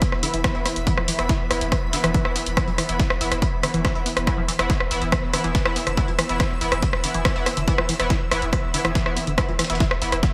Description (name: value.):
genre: driving peak-time techno.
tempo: 141 BPM.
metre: 4/4.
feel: straight.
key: unclear.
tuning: A4 = 439 Hz.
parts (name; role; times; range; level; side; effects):
tight sequenced synth; riff; 0.0-10.3 s; D3 to E4; -33 LUFS; equal; chorus, cassette tape, sidechain pumping, digital delay.
swarming drone; drone; 0.0-10.3 s; E3 to B3; -37 LUFS; equal; none.
dusty soul sampler-style drum kit; drums; 0.0-10.3 s; hi-hat, snare drum; -37 LUFS; equal; none.
electronic kick drum; drums; 0.0-10.3 s; none; -25 LUFS; equal; overdrive.
punchy analog drum machine; drums; 0.0-10.3 s; hi-hat, rim click; -27 LUFS; equal; sidechain pumping on hats, gated reverb.
granular cloud pad; texture; 0.0-10.3 s; E4 to E6; -36 LUFS; equal; none.
warm sub bass; bass; 0.1-10.2 s; E1; -33 LUFS; equal; overdrive, sidechain pumping, low-pass filter.
sync-sweep polysynth; stabs; 0.2-10.1 s; E3 to E4; -31 LUFS; equal; chorus, sidechain pumping, digital delay.
swell; sound effects; 10.3 s; none; -43 LUFS; equal; none.
room: light reverb, digital ambience.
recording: bright 1980s-style digital production.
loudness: -22 LUFS.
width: mono.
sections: 0.0-10.3 A section.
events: none.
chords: 0.0 E5.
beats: 0.02 0.44 | 0.87 1.29 1.72 2.14 | 2.57 3.00 3.42 3.85 | 4.27 4.70 5.12 5.55 | 5.97 6.40 6.83 7.25 | 7.68 8.10 8.53 8.95 | 9.38 9.80 10.23.